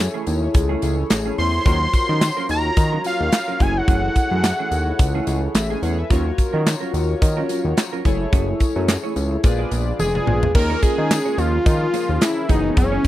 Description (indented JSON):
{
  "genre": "early-eighties boogie funk",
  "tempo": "108 BPM",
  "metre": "4/4",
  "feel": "swing 56% on 16ths",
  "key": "unclear",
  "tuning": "A4 = 440 Hz",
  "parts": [
    { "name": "chorused polysynth", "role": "accompaniment", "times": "0.0-13.1 s", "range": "Fb3 to Ab5", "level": "-25 LUFS", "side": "left 2 dB", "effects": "none" },
    { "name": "mellow electric guitar", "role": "riff", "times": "0.0-13.1 s", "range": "Fb3 to Eb5", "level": "-30 LUFS", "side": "right 7 dB", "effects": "lush chorus" },
    { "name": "fat analog bass", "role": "bass", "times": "0.0-13.0 s", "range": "F1 to Eb3", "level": "-22 LUFS", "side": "equal", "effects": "none" },
    { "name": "modern studio drum kit", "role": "drums", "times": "0.0-13.1 s", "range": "crash cymbal, handclaps, hi-hat, kick drum, snare drum, toms", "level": "-18 LUFS", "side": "equal", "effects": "none" },
    { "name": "tambourine", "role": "percussion", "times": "0.3-13.1 s", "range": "none", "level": "-36 LUFS", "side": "left 15 dB", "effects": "none" },
    { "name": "fat analog lead", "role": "melody", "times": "1.4-5.4, 10.0-13.1 s", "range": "Db4 to C6", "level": "-22 LUFS", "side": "equal", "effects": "none" }
  ],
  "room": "little or no reverb",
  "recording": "dry, close 1970s-style studio recording",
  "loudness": "-17 LUFS",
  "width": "side -14 dB against mid",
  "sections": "0.0-10.5 A section; 10.5-13.1 B section",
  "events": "drum fill 10.0-10.5",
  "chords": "0.0 Gbm9 (rootless); 1.7 Ebm9; 3.6 Gbm9; 6.1 Ebm9; 8.0 Gbm9; 9.4 Bb7b9; 10.5 Eb9sus4; 12.5 Gb9sus4"
}